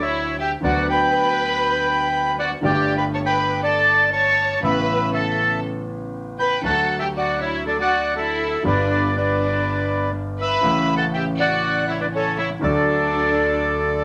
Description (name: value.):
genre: tango.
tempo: 120 BPM.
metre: 4/4.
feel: rubato.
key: D major.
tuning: A4 = 441 Hz.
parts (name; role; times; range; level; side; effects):
bandoneon; melody; 0.0-14.0 s; A4 to C#6; -22 LUFS; equal; none.
rich studio violin section; second line; 0.0-14.0 s; C#4 to C#5; -29 LUFS; equal; none.
warm concert grand piano; accompaniment; 0.0-14.0 s; G1 to G4; -27 LUFS; equal; none.
upright bass; bass; 0.0-14.0 s; G1 to D2; -36 LUFS; equal; none.
room: wet studio reverb, RT60 0.7 s.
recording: none.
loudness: -20 LUFS.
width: mono.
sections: 0.0-14.0 A section.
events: none.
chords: 0.0 Dadd9; 0.6 Bm/D; 2.6 Gsus2; 4.6 Aadd9; 6.6 D; 8.6 G; 10.6 A; 12.6 D.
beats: 0.13 | 0.63 1.13 1.64 2.13 | 2.63 3.13 3.62 4.12 | 4.62 5.13 5.63 6.13 | 6.64 7.14 7.65 8.15 | 8.65 9.15 9.64 10.14 | 10.63 11.13 11.63 12.12 | 12.62 13.12 13.62.